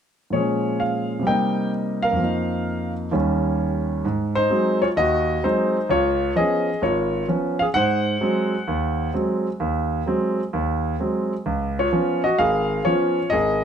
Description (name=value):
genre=solo jazz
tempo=129 BPM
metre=4/4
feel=swing 68% on 8ths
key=Ab mixolydian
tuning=A4 = 440 Hz
part: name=warm grand piano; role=solo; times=0.3-13.6 s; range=Ab1 to G5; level=-19 LUFS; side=equal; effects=none
room=moderate studio reverb, RT60 0.9 s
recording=none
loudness=-20 LUFS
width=side -8 dB against mid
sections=0.3-4.0 A section; 4.0-13.6 B section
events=none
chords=0.3 Bbm7; 1.2 Cm7; 2.2 F7sus4; 3.1 Eb7; 4.0 Ab7; 5.9 Db7; 7.7 Ab7; 11.5 Db7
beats=| 0.32 0.78 1.25 1.71 | 2.18 2.64 3.10 3.57 | 4.03 4.49 4.96 5.42 | 5.88 6.35 6.81 7.27 | 7.74 8.20 8.67 9.13 | 9.59 10.06 10.52 10.99 | 11.45 11.92 12.38 12.85 | 13.31